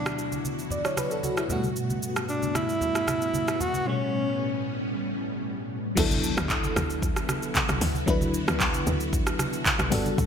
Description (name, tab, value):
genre	amapiano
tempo	114 BPM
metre	4/4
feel	straight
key	D major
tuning	A4 = 440 Hz
part	breathy alto saxophone	melody	0.0-4.7 s	C#4 to F#4	-28 LUFS	equal	ping-pong delay
part	FM electric piano with tremolo	accompaniment	0.0-10.3 s	B2 to D5	-30 LUFS	left 2 dB	phaser
part	string machine, cellos	sustained chords	0.0-10.3 s	D2 to B4	-32 LUFS	equal	ensemble chorus
part	afro-pop drum kit	drums	0.1-10.3 s	crash cymbal, handclaps, hi-hat, kick drum, rim click, shaker	-27 LUFS	equal	gated reverb
part	congas	percussion	0.3-10.2 s	none	-34 LUFS	right 2 dB	none
part	tight log drum bass	bass	6.0-10.3 s	G1 to D2	-30 LUFS	equal	none
part	impact	sound effects	6.0-8.1 s	none	-36 LUFS	equal	none
room	moderate plate reverb, RT60 1.3 s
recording	bright 1980s-style digital production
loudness	-24 LUFS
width	side -7 dB against mid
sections	0.0-6.0 A section; 6.0-10.3 B section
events	break 3.9-6.0; drop 6.0-10.3; impact 6.0-8.1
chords	0.0 D69; 1.5 Gmaj9; 3.9 A9; 6.0 D69